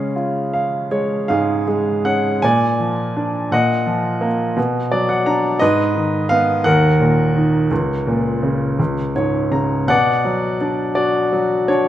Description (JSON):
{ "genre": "classical, lyrical solo piano", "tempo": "52-58 BPM (dotted quarters)", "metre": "6/8", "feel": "rubato", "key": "unclear", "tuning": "A4 = 438 Hz", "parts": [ { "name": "clear baby grand piano", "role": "solo", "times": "0.0-11.9 s", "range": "C#2 to A#5", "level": "-15 LUFS", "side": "equal", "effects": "none" } ], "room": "moderate recital hall reverb, RT60 1.5 s", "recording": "dark, warm production", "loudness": "-15 LUFS", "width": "side -12 dB against mid", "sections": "0.0-9.9 A section; 9.9-11.9 B section", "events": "grand piano fill 0.2-1.3, 4.6-5.6, 8.8-9.9", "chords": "0.0 C#; 2.4 A#7; 3.5 D#madd9/A#; 4.6 Bm; 5.6 G#m; 6.7 D#m; 7.7 F#/C#; 8.8 C#5; 9.9 Bm" }